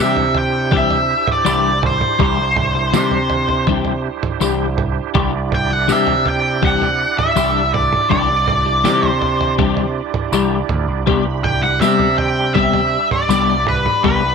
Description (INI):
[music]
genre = psychedelic rock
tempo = 81 BPM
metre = 4/4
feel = straight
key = C major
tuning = A4 = 441 Hz
[part]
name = octave-fuzz lead guitar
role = melody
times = 0.0-14.3 s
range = B4 to G5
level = -17 LUFS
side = equal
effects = wah, distortion, tape echo
[part]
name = bright tonewheel organ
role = sustained chords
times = 0.0-14.3 s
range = G3 to B5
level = -25 LUFS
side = right 14 dB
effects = overdrive, chorus vibrato, fast rotary speaker
[part]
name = twelve-string electric guitar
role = riff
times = 0.0-14.3 s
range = E3 to G4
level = -18 LUFS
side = left 12 dB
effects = rotary speaker
[part]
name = growling picked electric bass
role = bass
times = 0.0-14.3 s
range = C2 to C3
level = -20 LUFS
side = right 1 dB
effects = overdrive
[part]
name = lo-fi sampler-style drum kit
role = drums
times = 0.2-14.2 s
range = kick drum, snare drum, toms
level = -22 LUFS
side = right 4 dB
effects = none
[part]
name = tambourine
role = percussion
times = 1.5-13.5 s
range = none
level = -31 LUFS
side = right 16 dB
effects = none
[sound]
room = light reverb, digital ambience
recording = 1960s-style stereo with parts hard left and right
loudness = -14 LUFS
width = side -6 dB against mid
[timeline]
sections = 0.0-14.3 A section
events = none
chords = 0.0 Cadd9; 11.1 G/C